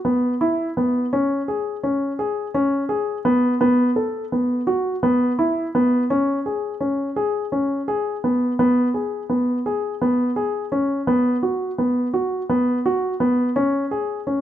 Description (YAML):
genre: contemporary instrumental, contemporary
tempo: 169 BPM (eighths)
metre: 7/8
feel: straight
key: unclear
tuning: A4 = 440 Hz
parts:
  - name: dark grand piano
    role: solo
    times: 0.0-14.4 s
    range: B3 to A4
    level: -19 LUFS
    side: equal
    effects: none
room: light reverb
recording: close, detailed microphones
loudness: -19 LUFS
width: side -11 dB against mid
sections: 0.0-8.6 A section; 8.6-14.4 B section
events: none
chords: none